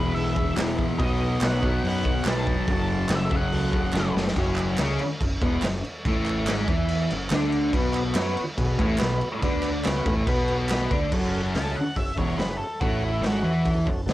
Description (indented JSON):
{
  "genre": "garage rock duo or trio",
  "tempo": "142 BPM",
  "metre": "4/4",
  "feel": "straight",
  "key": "F# minor",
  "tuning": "A4 = 440 Hz",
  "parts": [
    { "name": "octave-fuzz lead guitar", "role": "melody", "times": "0.0-4.1, 11.6-13.7 s", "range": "E4 to A5", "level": "-32 LUFS", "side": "equal", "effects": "distortion, cassette tape, tape echo" },
    { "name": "combo organ", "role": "sustained chords", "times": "0.0-4.2, 7.7-14.1 s", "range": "B3 to C#5", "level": "-32 LUFS", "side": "equal", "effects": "cassette tape" },
    { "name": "thick fuzz guitar", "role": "riff", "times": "0.0-14.1 s", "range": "E2 to F#4", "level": "-26 LUFS", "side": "equal", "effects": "distortion, cassette tape" },
    { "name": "growling fingered electric bass", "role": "bass", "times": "0.0-14.1 s", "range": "E1 to F#2", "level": "-29 LUFS", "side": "equal", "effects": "overdrive" },
    { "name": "raw garage drum kit", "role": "drums", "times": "0.2-14.1 s", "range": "crash cymbal, hi-hat, kick drum, snare drum", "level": "-28 LUFS", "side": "equal", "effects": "cassette tape" },
    { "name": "group handclap", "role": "percussion", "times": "0.6-10.8 s", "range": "none", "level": "-33 LUFS", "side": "right 3 dB", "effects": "none" }
  ],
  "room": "little or no reverb",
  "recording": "home recording on cassette",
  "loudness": "-22 LUFS",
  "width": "side -15 dB against mid",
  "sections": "0.0-4.4 A section; 4.4-11.1 B section; 11.1-14.1 C section",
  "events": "drum fill 3.9-4.4; lead electric guitar solo 11.1-14.1",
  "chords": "0.0 E; 1.0 B; 2.7 F#m; 7.7 B5; 11.1 F#m"
}